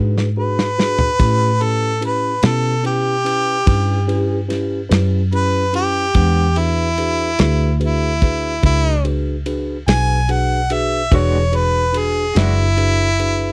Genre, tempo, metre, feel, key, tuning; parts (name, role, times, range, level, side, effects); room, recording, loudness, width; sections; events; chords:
slow blues; 48 BPM (dotted quarters); 12/8; straight; E mixolydian; A4 = 445 Hz
mellow tine electric piano; accompaniment; 0.0-13.5 s; G#3 to F#5; -27 LUFS; equal; phaser
vintage muted fingered electric bass; bass; 0.0-13.5 s; E1 to B2; -21 LUFS; equal
warm soul drum kit; drums; 0.2-13.4 s; kick drum, ride cymbal, snare drum, toms; -20 LUFS; equal
warm harmonica; melody; 0.4-13.5 s; E4 to G#5; -21 LUFS; equal; slapback echo
mellow electric guitar; accompaniment; 11.1-12.6 s; E3 to F#4; -28 LUFS; equal; tremolo
little or no reverb; dry, close 1970s-style studio recording; -17 LUFS; mono
0.0-13.5 A section
drum fill 0.0-1.2; harmonica solo 0.0-13.5
0.0 E9 (rootless); 1.2 A9; 6.2 E9